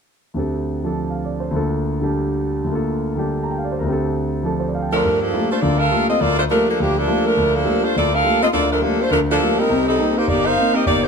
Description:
jazz; 206 BPM; 4/4; swing 60% on 8ths; G minor; A4 = 438 Hz
warm concert grand piano; accompaniment; 0.3-11.1 s; G1 to C6; -20 LUFS; equal
bright saxophone section; melody; 4.9-11.1 s; F3 to F5; -17 LUFS; equal
moderate echo chamber reverb, RT60 1.8 s; dark, warm production; -17 LUFS; side -6 dB against mid
0.4-5.0 A section; 5.0-11.1 B section
0.4 D7sus4; 1.5 Gm7/D; 3.9 D7sus4; 5.0 Gm9; 9.7 Cm7

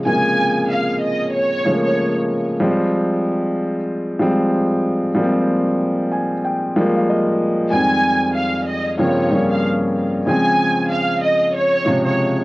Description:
hip hop; 94 BPM; 4/4; swing 61% on 16ths; A4 = 440 Hz
dark grand piano; accompaniment; 0.0-12.4 s; F2 to Ab5; -17 LUFS; equal; cassette tape, high-pass filter, low-pass filter
warm studio violin section; melody; 0.1-2.1, 7.7-12.4 s; Db5 to Ab5; -19 LUFS; right 1 dB; high-pass filter, low-pass filter
light reverb; home recording on cassette; -16 LUFS; side -20 dB against mid
0.0-7.7 A section; 7.7-12.4 B section
0.0 Bbm7; 2.6 Fmadd9; 7.7 Fm7; 9.0 Gm7b5; 10.3 Dbmaj7

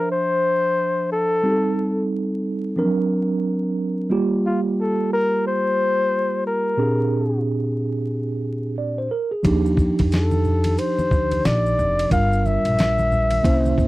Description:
hip hop, jazz-hop; 90 BPM; 4/4; swing 61% on 16ths; A4 = 440 Hz
breathy flugelhorn; melody; 0.0-13.9 s; F4 to F5; -21 LUFS; left 2 dB
mellow tine electric piano; accompaniment; 0.0-13.9 s; Bb2 to E5; -22 LUFS; right 2 dB; slow stereo tremolo
upright bass; bass; 9.4-13.9 s; F1 to F2; -22 LUFS; equal
dusty soul sampler-style drum kit; drums; 9.4-13.9 s; hi-hat, kick drum, ride cymbal, snare drum; -21 LUFS; equal
maracas and congas; percussion; 9.4-13.9 s; -31 LUFS; left 1 dB
little or no reverb; dry, close 1970s-style studio recording, vinyl crackle; -18 LUFS; side -18 dB against mid
0.0-13.9 A section
0.0 Dm9; 1.4 Am7b5; 2.8 D7b13; 4.1 Gm7; 6.8 Bb13; 9.4 Ebmaj9; 12.1 Gm7

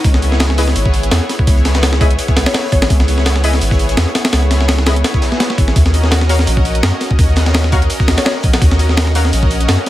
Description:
drum and bass, jungle; 168 BPM; 4/4; swing 55% on 16ths; C# dorian; A4 = 440 Hz
lush unison pad; sustained chords; 0.0-9.9 s; B3 to D#5; -20 LUFS; left 1 dB; chorus
soft dub sub bass; bass; 0.0-9.8 s; G#1 to F#2; -14 LUFS; equal
breakbeat sampler-style drum kit; drums; 0.0-9.9 s; hi-hat, kick drum, snare drum; -14 LUFS; equal
crunchy breakbeat drum kit; drums; 0.0-9.9 s; hi-hat, snare drum; -29 LUFS; left 1 dB
orchestra-hit-like synth stab; stabs; 0.6-9.2 s; E4 to E#5; -24 LUFS; left 2 dB
mallet-like synth pluck; melody; 2.5-2.9, 8.2-8.3 s; C#5; -25 LUFS; left 3 dB; chorus, dub echo
digital ambience; vinyl crackle; -11 LUFS; side -14 dB against mid
0.0-9.9 A section
0.0 C#m7; 5.8 D#m7

